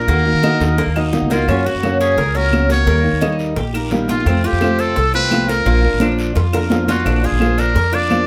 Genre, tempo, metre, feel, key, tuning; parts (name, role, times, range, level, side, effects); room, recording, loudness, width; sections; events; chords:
latin, Cuban son and guajira; 172 BPM; 4/4; straight; Eb minor; A4 = 441 Hz
trumpet with metal mute; melody; 0.0-8.3 s; F4 to D5; -22 LUFS; equal
fingerpicked steel-string acoustic guitar; accompaniment; 0.0-8.3 s; C3 to G4; -22 LUFS; equal
Cuban tres; arpeggios; 0.0-8.3 s; Bb3 to Bb4; -25 LUFS; equal; slapback echo
upright bass; bass; 0.0-8.3 s; Bb1 to Eb3; -20 LUFS; equal
bongos; percussion; 0.1-8.3 s; -30 LUFS; equal
congas; percussion; 0.1-8.3 s; -26 LUFS; equal
guiro; percussion; 0.1-8.3 s; -37 LUFS; equal
claves; percussion; 0.4-8.3 s; -34 LUFS; equal
light reverb; close, detailed microphones; -16 LUFS; mono
0.0-1.5 A section; 1.5-8.3 B section
drum fill 0.4-1.5, 6.5-7.1
0.1 Ebm; 1.5 Gb; 2.9 Eb; 4.3 F; 5.7 Bb